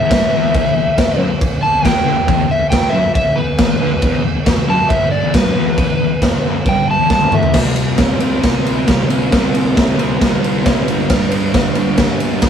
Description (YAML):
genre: garage rock duo or trio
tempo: 136 BPM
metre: 4/4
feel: straight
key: E minor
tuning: A4 = 437 Hz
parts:
  - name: overdriven slide guitar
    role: melody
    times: 0.0-7.6 s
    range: B4 to A5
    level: -16 LUFS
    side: equal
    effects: none
  - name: fuzz guitar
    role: riff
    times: 0.0-12.5 s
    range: E2 to C4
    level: -18 LUFS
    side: equal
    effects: distortion
  - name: raw garage drum kit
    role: drums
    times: 0.1-12.5 s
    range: crash cymbal, kick drum, ride cymbal, snare drum, toms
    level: -15 LUFS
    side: equal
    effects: none
room: moderate small room reverb, RT60 0.5 s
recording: rough rehearsal-room recording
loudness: -12 LUFS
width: side -8 dB against mid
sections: 0.0-7.6 A section; 7.6-12.5 B section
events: electric slide guitar solo 0.0-7.6; drum fill 7.1-7.6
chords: 0.0 Em; 7.6 C5; 10.9 G5